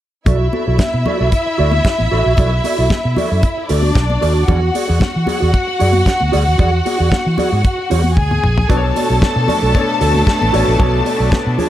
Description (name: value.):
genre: disco.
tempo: 114 BPM.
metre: 4/4.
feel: straight.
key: B dorian.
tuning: A4 = 440 Hz.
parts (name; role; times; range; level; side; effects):
warm symphonic violin section; second line; 0.3-11.7 s; D4 to A5; -19 LUFS; left 1 dB; none.
mellow electric guitar; accompaniment; 0.3-11.7 s; F#4 to D5; -20 LUFS; right 4 dB; analog chorus.
fingered electric bass; bass; 0.3-11.6 s; A1 to E3; -16 LUFS; equal; none.
damped 70s drum kit; drums; 0.3-11.7 s; hi-hat, kick drum, snare drum, toms; -18 LUFS; equal; none.
congas; percussion; 0.3-11.7 s; none; -26 LUFS; left 4 dB; none.
clear baby grand piano; accompaniment; 8.7-11.7 s; B2 to C#5; -22 LUFS; left 4 dB; none.
clear studio string section; sustained chords; 8.7-11.7 s; A3 to D4; -22 LUFS; equal; none.
room: light reverb, studio reverb.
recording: none.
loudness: -12 LUFS.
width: side -12 dB against mid.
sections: 0.3-11.7 A section.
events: drum fill 8.2-8.7.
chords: 0.3 Bm7; 4.5 E9; 8.7 Bm7.